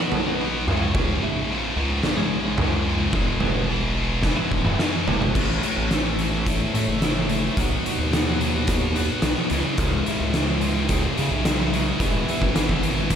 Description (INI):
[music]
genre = quiet-loud alternative rock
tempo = 108 BPM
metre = 4/4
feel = straight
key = C# minor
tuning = A4 = 440 Hz
[part]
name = twelve-string electric guitar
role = arpeggios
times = 0.0-13.2 s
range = C#2 to B4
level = -28 LUFS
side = equal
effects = lush chorus
[part]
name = scooped high-gain guitar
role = riff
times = 0.0-13.2 s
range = C#2 to B3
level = -26 LUFS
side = left 1 dB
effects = distortion
[part]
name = oversized low-tuned drum kit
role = drums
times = 0.1-13.2 s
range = crash cymbal, hi-hat, kick drum, snare drum, toms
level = -24 LUFS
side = equal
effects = none
[part]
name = gritty driven synth bass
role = bass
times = 0.7-13.2 s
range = C#1 to C#3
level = -26 LUFS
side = equal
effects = none
[sound]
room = moderate lush hall reverb, RT60 2.0 s, small room ambience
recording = big arena sound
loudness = -20 LUFS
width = side -8 dB against mid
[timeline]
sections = 0.0-5.4 A section; 5.4-13.2 B section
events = half time 0.0-5.4; drum fill 4.2-5.4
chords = 0.0 B; 0.7 C#m; 3.1 E6; 5.4 A; 7.6 B; 9.5 C#m; 12.0 E